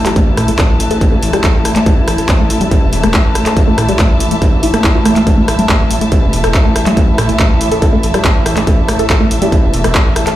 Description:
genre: driving peak-time techno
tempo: 141 BPM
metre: 4/4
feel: straight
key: unclear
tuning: A4 = 442 Hz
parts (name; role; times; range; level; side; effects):
- gritty driven synth bass; bass; 0.0-10.4 s; E1 to A2; -18 LUFS; equal; sidechain pumping
- overtone-sweeping drone; drone; 0.0-10.4 s; A2 to E3; -24 LUFS; left 1 dB; chorus, built-in reverb, sidechain pumping
- dark studio string section; texture; 0.0-10.4 s; A3 to A5; -18 LUFS; left 1 dB; sidechain pumping
- tight sequenced synth; riff; 0.1-10.3 s; G3 to A4; -18 LUFS; equal; chorus, phaser, overdrive, sidechain pumping, digital delay
- punchy analog drum machine; drums; 0.1-10.4 s; handclaps, hi-hat, rim click; -18 LUFS; equal; none
- electronic kick drum; drums; 0.2-10.0 s; none; -12 LUFS; equal; distortion
room: light reverb, small room ambience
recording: played on a big sound system in a bare room, large studio reverb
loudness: -9 LUFS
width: side -13 dB against mid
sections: 0.0-10.4 A section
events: filter sweep on synth arpeggio sound 0.0-10.4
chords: 0.0 A5

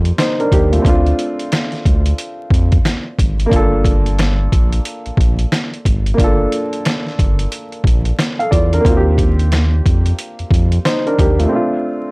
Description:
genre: hip hop, boom-bap hip-hop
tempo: 90 BPM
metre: 4/4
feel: swing 61% on 16ths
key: G minor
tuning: A4 = 436 Hz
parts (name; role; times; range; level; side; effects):
- dark grand piano; accompaniment; 0.0-12.1 s; A3 to F5; -19 LUFS; equal; cassette tape, high-pass filter, low-pass filter
- round analog bass; bass; 0.0-11.5 s; G1 to F2; -15 LUFS; equal; transformer saturation
- trip hop sampler-style drum kit; drums; 0.1-11.5 s; hi-hat, kick drum, snare drum; -16 LUFS; equal; none
room: little or no reverb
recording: dry, gritty hardware recording, transformer saturation, vinyl crackle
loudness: -13 LUFS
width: side -26 dB against mid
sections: 0.0-12.1 A section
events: break 11.5-12.1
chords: 0.0 Eb69; 0.9 Dm7; 3.5 Gm7; 8.9 Eb69; 11.5 Dm7

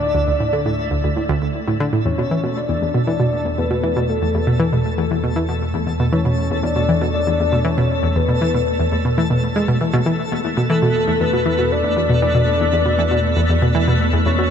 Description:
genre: ambient, sequencer-driven space music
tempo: 118 BPM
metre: 4/4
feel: straight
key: unclear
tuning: A4 = 440 Hz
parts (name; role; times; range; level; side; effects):
- soft octave-layered synth lead; melody; 0.0-14.5 s; A4 to D5; -22 LUFS; left 2 dB; chorus, ping-pong delay
- warm sub bass; bass; 0.0-14.5 s; D2 to E2; -24 LUFS; equal; none
- twinkling granular texture; texture; 0.0-14.5 s; A3 to A4; -25 LUFS; equal; built-in reverb
- analog pluck; riff; 0.1-14.4 s; D2 to G#3; -19 LUFS; equal; chorus, ping-pong delay
room: moderate huge ambient reverb, RT60 7.1 s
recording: none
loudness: -16 LUFS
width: side -8 dB against mid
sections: 0.0-14.5 A section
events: fade-in on sub bass 0.0-14.5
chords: 0.0 D5; 2.1 E7sus4

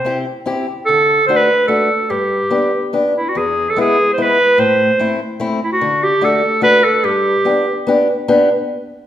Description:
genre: alpine folk, alpine dance band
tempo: 146 BPM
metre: 3/4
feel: straight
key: G major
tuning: A4 = 440 Hz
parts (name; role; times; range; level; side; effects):
- bright clarinet; melody; 0.0-7.9 s; E4 to C5; -13 LUFS; right 1 dB; none
- fingerpicked acoustic archtop guitar; accompaniment; 0.0-8.5 s; E2 to G4; -17 LUFS; left 2 dB; none
room: wet recital hall reverb, RT60 1.3 s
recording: recorded in a church or concert hall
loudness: -12 LUFS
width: side -11 dB against mid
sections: 0.0-3.4 A section; 3.4-8.3 B section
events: none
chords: 0.0 C; 0.9 D; 2.1 G; 3.4 E; 4.6 Am; 5.8 D; 7.0 G

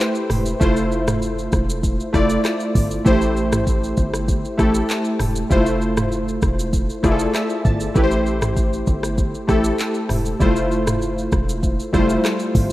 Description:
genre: afrobeats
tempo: 98 BPM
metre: 4/4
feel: straight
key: unclear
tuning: A4 = 440 Hz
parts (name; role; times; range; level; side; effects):
- warm analog keys; accompaniment; 0.0-12.7 s; G3 to A5; -20 LUFS; equal; chorus
- afro-pop drum kit; drums; 0.0-12.7 s; handclaps, hi-hat, kick drum, rim click, shaker, toms; -21 LUFS; equal; none
- hard-hitting 808-style bass; bass; 0.3-12.7 s; E1 to A1; -24 LUFS; equal; none
room: moderate lush hall reverb, RT60 2.4 s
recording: rough home demo mix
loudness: -17 LUFS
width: side -16 dB against mid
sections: 0.0-12.7 A section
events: synth keys fill 6.7-8.0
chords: 0.0 Am7; 0.6 Fmaj7; 3.1 Am7; 5.5 Fmaj7; 8.0 Am7; 10.4 Fmaj7

